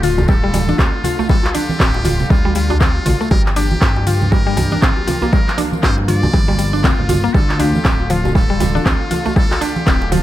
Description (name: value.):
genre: afro house.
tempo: 119 BPM.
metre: 4/4.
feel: swing 59% on 16ths.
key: G minor.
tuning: A4 = 444 Hz.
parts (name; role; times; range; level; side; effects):
trumpet with metal mute; melody; 0.0-10.2 s; F4 to D5; -24 LUFS; equal; tape echo.
dark chamber string section; sustained chords; 0.0-10.2 s; D3 to G4; -26 LUFS; left 2 dB; sidechain pumping.
mallet-like synth pluck; arpeggios; 0.0-10.2 s; F3 to F4; -21 LUFS; equal; chorus, sidechain pumping, tape echo.
smooth gliding synth bass; bass; 0.0-10.2 s; D1 to G2; -19 LUFS; equal; sidechain pumping.
afro-pop drum kit; drums; 0.0-10.2 s; handclaps, hi-hat, toms; -23 LUFS; equal; analog delay.
tambourine; percussion; 0.0-10.2 s; none; -36 LUFS; right 2 dB; none.
congas; percussion; 0.2-10.2 s; none; -24 LUFS; right 3 dB; analog delay.
djembe; percussion; 0.2-10.2 s; none; -25 LUFS; left 2 dB; analog delay.
electronic kick drum; drums; 0.3-10.0 s; none; -15 LUFS; equal; none.
room: small room reverb.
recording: echo-heavy mix.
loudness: -13 LUFS.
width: side -14 dB against mid.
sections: 0.0-10.2 A section.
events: none.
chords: 0.0 Dm; 3.3 Gm7; 7.3 Dm.